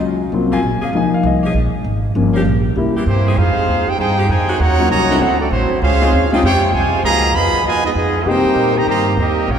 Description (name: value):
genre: jazz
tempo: 196 BPM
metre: 4/4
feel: swing 63% on 8ths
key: F minor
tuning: A4 = 440 Hz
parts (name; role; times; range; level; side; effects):
- warm concert grand piano; accompaniment; 0.0-9.1 s; F3 to Ab5; -19 LUFS; left 3 dB; none
- upright bass; bass; 0.0-9.6 s; G1 to C3; -18 LUFS; right 1 dB; none
- bright saxophone section; sustained chords; 0.5-9.1 s; Cb3 to Ab4; -27 LUFS; equal; none
- clear trumpet section; melody; 3.1-9.6 s; A3 to Cb6; -17 LUFS; right 1 dB; none
- warm trombone section; second line; 3.1-9.6 s; Cb3 to Ab4; -20 LUFS; right 2 dB; none
room: wet church reverb, RT60 3.2 s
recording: recorded in a church or concert hall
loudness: -13 LUFS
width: side -8 dB against mid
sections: 0.0-3.4 A section; 3.4-9.6 B section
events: grand piano solo 0.0-3.4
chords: 0.3 Ab13; 0.9 Db6; 2.2 Gm7b5; 2.8 C7; 3.4 Fm9; 4.6 Ebm7; 5.2 D9; 5.8 Dbmaj7; 7.0 Db13; 8.3 Cm7